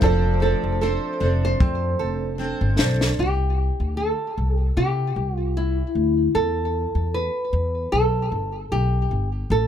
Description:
acoustic pop; 76 BPM; 4/4; swing 55% on 16ths; C major; A4 = 443 Hz
nylon-string guitar; melody; 0.0-9.7 s; E4 to C5; -24 LUFS; equal; ping-pong delay
picked steel-string acoustic guitar; accompaniment; 0.0-3.2 s; D3 to C5; -27 LUFS; left 1 dB; double-tracked left and right
warm upright piano; accompaniment; 0.0-3.2 s; A3 to D5; -37 LUFS; left 8 dB
nylon-string guitar; arpeggios; 0.0-3.8 s; F3 to A4; -30 LUFS; right 6 dB
upright bass; bass; 0.0-9.7 s; F1 to C3; -23 LUFS; equal
compact cocktail drum kit; drums; 0.0-3.2 s; kick drum, snare drum; -21 LUFS; left 1 dB
little or no reverb; -20 LUFS; side -9 dB against mid
0.0-3.2 A section; 3.2-9.7 B section
drum fill 0.0-3.2
0.0 F6; 3.2 C5; 6.3 Em
| 0.03 0.82 1.61 2.40 | 3.19 3.98 4.76 5.55 | 6.34 7.13 7.92 8.71 | 9.50

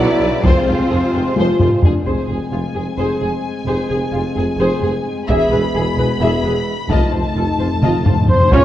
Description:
cinematic, epic orchestral film score; 260 BPM (eighths); 7/8; straight; F dorian; A4 = 440 Hz
rich chamber violin section; melody; 0.0-8.6 s; F4 to B5; -26 LUFS; left 4 dB
rich symphonic violin section; second line; 0.0-8.6 s; F4 to E5; -25 LUFS; left 2 dB
rich symphonic viola section; accompaniment; 0.0-8.6 s; Db3 to Ab4; -23 LUFS; equal
clear symphonic string section; sustained chords; 0.0-2.1, 8.5-8.6 s; Bb3 to D5; -26 LUFS; right 1 dB
clear trombone section; sustained chords; 0.0-1.8, 8.5-8.6 s; B2 to Ab3; -25 LUFS; right 3 dB
mellow French horn section; sustained chords; 0.0-8.6 s; Ab3 to D5; -22 LUFS; left 3 dB
bright symphonic double bass section; bass; 0.0-8.6 s; E1 to F2; -23 LUFS; right 2 dB
rich symphonic cello section; bass; 0.0-8.6 s; E2 to F4; -27 LUFS; right 1 dB
warm tuba; bass; 0.0-8.6 s; E1 to B1; -24 LUFS; right 2 dB
taiko ensemble; drums; 0.4-8.6 s; -16 LUFS; equal
timpani; percussion; 2.1-2.7, 6.9-8.5 s; F2; -21 LUFS; equal
mellow trumpet; stabs; 8.3-8.6 s; C5 to Db5; -13 LUFS; equal
wet scoring stage reverb, RT60 1.5 s; worn, warbling old tape, cassette tape, warbly pitch drift; -14 LUFS; side -12 dB against mid
0.0-2.1 A section; 2.1-8.5 B section
drum fill 1.4-2.1, 7.8-8.5; timpani fill 6.9-8.5
0.4 Fm; 5.3 E; 6.9 F7
0.21 | 0.44 0.68 0.91 1.14 1.37 1.60 1.83 | 2.06 2.29 2.52 2.75 2.98 3.21 3.44 | 3.68 3.91 4.14 4.37 4.60 4.83 5.06 | 5.29 5.52 5.75 5.98 6.21 6.45 6.68 | 6.91 7.14 7.37 7.60 7.83 8.06 8.29 | 8.52

